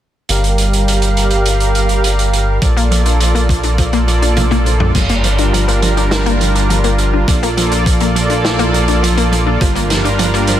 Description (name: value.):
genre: synthwave.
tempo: 103 BPM.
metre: 4/4.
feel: straight.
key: G minor.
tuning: A4 = 439 Hz.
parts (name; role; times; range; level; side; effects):
soft supersaw; sustained chords; 0.3-10.6 s; G3 to F5; -17 LUFS; right 2 dB; sidechain pumping, low-pass filter.
chorused synth bass; bass; 0.3-10.6 s; G1 to Bb1; -15 LUFS; equal; tube saturation.
vintage drum kit; drums; 0.3-10.6 s; crash cymbal, hi-hat, snare drum, toms; -19 LUFS; right 2 dB; none.
analog pluck; arpeggios; 2.6-10.6 s; F3 to D4; -19 LUFS; left 3 dB; chorus, tape echo.
electronic kick drum; drums; 2.6-9.7 s; none; -16 LUFS; equal; none.
room: light reverb.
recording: none.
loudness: -11 LUFS.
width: side -11 dB against mid.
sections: 0.3-5.0 A section; 5.0-10.6 B section.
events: filter sweep on analog synth bass 0.3-5.0; filter sweep on supersaw synth 0.3-5.0; drum fill 4.4-5.0.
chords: 0.3 Gm7; 2.6 Bbmaj7; 5.0 Gm7; 7.3 Bbmaj7; 9.6 Gm7.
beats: | 0.29 0.87 1.46 2.04 | 2.62 3.20 3.79 4.37 | 4.95 5.53 6.12 6.70 | 7.28 7.86 8.45 9.03 | 9.61 10.19.